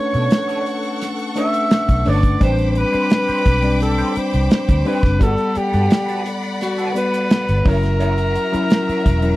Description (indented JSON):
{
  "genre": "lush 1970s-style soul",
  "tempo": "86 BPM",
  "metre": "4/4",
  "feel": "straight",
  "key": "unclear",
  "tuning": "A4 = 442 Hz",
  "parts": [
    { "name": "breathy alto saxophone", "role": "melody", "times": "0.0-9.4 s", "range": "F#4 to E5", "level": "-21 LUFS", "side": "equal", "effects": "none" },
    { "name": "rich studio violin section", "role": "second line", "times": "0.0-9.4 s", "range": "F#4 to D6", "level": "-28 LUFS", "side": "left 1 dB", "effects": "none" },
    { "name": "mellow tine electric piano", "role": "accompaniment", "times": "0.0-9.4 s", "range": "F#3 to F#5", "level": "-22 LUFS", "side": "left 2 dB", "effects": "none" },
    { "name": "electric guitar through a small old amp", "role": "riff", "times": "0.1-9.3 s", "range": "B3 to C#5", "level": "-29 LUFS", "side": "right 3 dB", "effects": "wah" },
    { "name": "vintage muted fingered electric bass", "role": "bass", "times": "0.1-9.4 s", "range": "E1 to B2", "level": "-19 LUFS", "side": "equal", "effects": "none" },
    { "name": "modern studio drum kit", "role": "drums", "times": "0.1-9.4 s", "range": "hi-hat, kick drum, snare drum", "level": "-16 LUFS", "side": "equal", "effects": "none" }
  ],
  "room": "little or no reverb",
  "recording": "dry, close 1970s-style studio recording",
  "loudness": "-15 LUFS",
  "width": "side -17 dB against mid",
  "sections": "0.0-9.4 A section",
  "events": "none",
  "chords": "0.0 Bm9; 2.4 Am11; 5.2 Gmaj9; 7.7 F#7",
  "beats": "0.31 1.01 1.71 | 2.41 3.11 3.81 4.51 | 5.21 5.91 6.61 7.31 | 8.01 8.71"
}